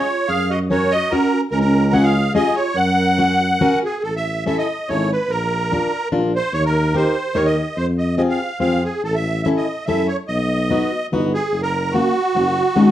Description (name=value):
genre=alpine folk, alpine dance band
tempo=145 BPM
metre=3/4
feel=swing 53% on 8ths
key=F# major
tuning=A4 = 440 Hz
part: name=musette accordion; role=melody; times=0.0-12.9 s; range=Gb4 to F#5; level=-20 LUFS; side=right 1 dB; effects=none
part: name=mellow clarinet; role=second line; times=0.0-3.8 s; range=C#4 to C#5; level=-24 LUFS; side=right 3 dB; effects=none
part: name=fingerpicked plugged-in swing-style acoustic guitar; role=accompaniment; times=0.0-12.9 s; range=Ab3 to A#4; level=-19 LUFS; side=left 2 dB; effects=none
part: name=warm tuba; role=bass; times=0.3-12.9 s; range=Gb1 to Gb2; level=-21 LUFS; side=equal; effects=none
room=wet studio reverb, RT60 0.6 s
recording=heard from further back in the room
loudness=-16 LUFS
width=side -12 dB against mid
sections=0.0-4.0 A section; 4.0-12.9 B section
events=none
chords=0.3 F#; 1.5 C#; 2.8 F#; 4.0 A; 5.3 Bb; 6.5 Eb; 7.8 Fm; 9.0 A; 10.3 Cb; 11.5 Gb